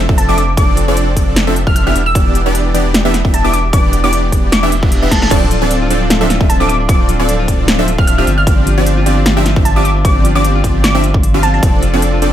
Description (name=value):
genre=future bass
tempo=152 BPM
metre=4/4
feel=swing 55% on 16ths, half-time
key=D dorian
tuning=A4 = 441 Hz
part: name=saturated sub bass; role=bass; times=0.0-12.3 s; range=D1 to G1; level=-15 LUFS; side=equal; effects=sidechain pumping
part: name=supersaw stab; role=riff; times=0.1-12.3 s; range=E3 to F5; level=-16 LUFS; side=right 1 dB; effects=sidechain pumping
part: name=electronic kick drum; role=drums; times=0.1-11.7 s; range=none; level=-13 LUFS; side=equal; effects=none
part: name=glassy wavetable pluck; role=melody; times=0.2-11.6 s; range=A5 to F6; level=-19 LUFS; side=equal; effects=chorus, sidechain pumping, dub echo
part: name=big-room dance drum kit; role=drums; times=0.2-12.3 s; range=crash cymbal, hi-hat, snare drum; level=-18 LUFS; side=equal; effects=none
part: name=reverse cymbal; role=sound effects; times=4.7-5.3 s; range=none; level=-23 LUFS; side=right 2 dB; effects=none
part: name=concert harp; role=arpeggios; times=5.3-12.3 s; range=C4 to F4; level=-22 LUFS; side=left 5 dB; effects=sidechain pumping, digital delay
room=digital ambience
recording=none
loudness=-10 LUFS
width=side -11 dB against mid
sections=0.0-12.3 A section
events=reverse cymbal 4.7-5.3; drum fill 5.1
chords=0.0 Dm7/F; 2.0 Em7; 5.3 Dm7; 8.3 G7sus4; 11.6 Dm7/F